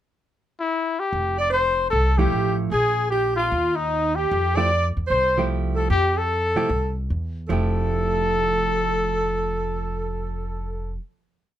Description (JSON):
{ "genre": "jazz, small-group swing and bop", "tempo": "151 BPM", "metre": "4/4", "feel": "swing 67% on 8ths", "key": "F major", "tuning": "A4 = 440 Hz", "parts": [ { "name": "mellow trumpet", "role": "melody", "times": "0.6-11.0 s", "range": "Eb4 to D5", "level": "-23 LUFS", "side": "left 3 dB", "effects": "none" }, { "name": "upright bass", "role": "bass", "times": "1.1-11.0 s", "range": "F1 to C3", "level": "-25 LUFS", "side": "equal", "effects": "none" }, { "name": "growling alto saxophone", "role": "second line", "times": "1.4-10.9 s", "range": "Eb4 to D5", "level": "-27 LUFS", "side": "right 3 dB", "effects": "none" }, { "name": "hollow-body jazz guitar", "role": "accompaniment", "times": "2.2-11.0 s", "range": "F3 to G4", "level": "-28 LUFS", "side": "right 6 dB", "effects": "none" } ], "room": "light reverb", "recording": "minimal, uncompressed stereo recording", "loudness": "-20 LUFS", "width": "side -11 dB against mid", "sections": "0.0-1.1 pickup bar; 1.1-7.5 A section; 7.5-10.7 final chord", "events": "none", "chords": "0.0 N.C.; 1.1 Fmaj9; 2.7 Fmadd11/Bb; 3.5 Ebadd9; 4.3 Fmaj9" }